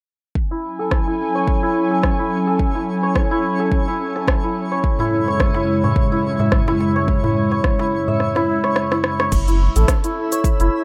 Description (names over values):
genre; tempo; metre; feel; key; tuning
organic downtempo; 107 BPM; 4/4; swing 56% on 16ths; F# minor; A4 = 438 Hz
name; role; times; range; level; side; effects
airy breathy pad; sustained chords; 0.7-9.3 s; F#2 to G#5; -25 LUFS; equal; chorus, sidechain pumping
electronic kick drum; drums; 0.4-10.6 s; none; -22 LUFS; equal; none
twinkling granular texture; texture; 0.8-10.8 s; C#4 to E5; -36 LUFS; equal; built-in reverb
santur; arpeggios; 0.5-10.8 s; E4 to E5; -23 LUFS; equal; low-pass filter, delay
deep house drum kit; drums; 0.9-10.7 s; crash cymbal, hi-hat, rim click, shaker; -25 LUFS; equal; none
darbuka; percussion; 5.0-9.3 s; none; -28 LUFS; equal; none
warm sub bass; bass; 9.3-10.7 s; F#1 to A1; -18 LUFS; equal; sidechain pumping
room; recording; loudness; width
moderate small room reverb, RT60 0.5 s; rough home demo mix; -19 LUFS; mono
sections
0.4-9.3 A section; 9.3-10.8 B section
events
filter sweep on santur 0.4-9.3; kick drops out 8.2-9.3; drum fill 8.2-9.3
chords
0.4 F#m7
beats
| 0.35 0.91 1.47 2.04 | 2.60 3.16 3.72 4.28 | 4.84 5.40 5.96 6.52 | 7.08 7.64 8.20 8.76 | 9.32 9.88 10.45